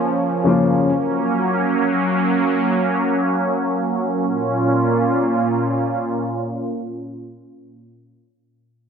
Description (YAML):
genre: hip hop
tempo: free time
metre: none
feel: none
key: Bb minor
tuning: A4 = 440 Hz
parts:
  - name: felt-muted upright piano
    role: accompaniment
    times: 0.0-0.9 s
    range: Db3 to F4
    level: -18 LUFS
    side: left 4 dB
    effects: low-pass filter
  - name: sweeping resonant pad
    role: sustained chords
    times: 0.0-7.8 s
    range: Bb2 to F4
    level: -18 LUFS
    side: right 1 dB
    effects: chorus, low-pass filter
room: moderate recital hall reverb, RT60 1.7 s, studio reverb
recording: none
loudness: -17 LUFS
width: side -6 dB against mid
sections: 0.0-4.2 A section; 4.2-7.6 B section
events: filter sweep 0.0-4.2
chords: 0.0 Bbm; 0.9 Gb; 4.2 Bbm